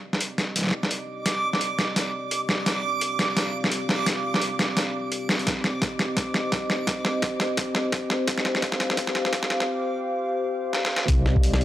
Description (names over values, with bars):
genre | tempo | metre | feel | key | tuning
half-time drum and bass | 171 BPM | 4/4 | swing 57% on 16ths, half-time | C minor | A4 = 436 Hz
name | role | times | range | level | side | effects
dark analog pad | sustained chords | 0.0-11.6 s | C4 to F5 | -29 LUFS | left 1 dB | chorus, sidechain pumping
backwards swelling texture | texture | 0.6-9.7 s | D6 | -31 LUFS | right 4 dB | built-in reverb
boom bap sampler-style drum kit | drums | 0.1-11.6 s | hi-hat, snare drum | -24 LUFS | equal | none
electronic kick drum | drums | 5.5-11.4 s | none | -25 LUFS | equal | none
dark detuned saw bass | bass | 11.1-11.6 s | C2 | -22 LUFS | equal | none
room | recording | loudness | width
little or no reverb | dry, gritty hardware recording, high-pass filter | -22 LUFS | side -13 dB against mid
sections
0.0-11.1 A section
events
build-up 0.0-11.1; drum fill 0.0-9.7, 10.7-11.1; filter sweep on analog synth pad 0.0-11.1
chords
0.0 Cmadd9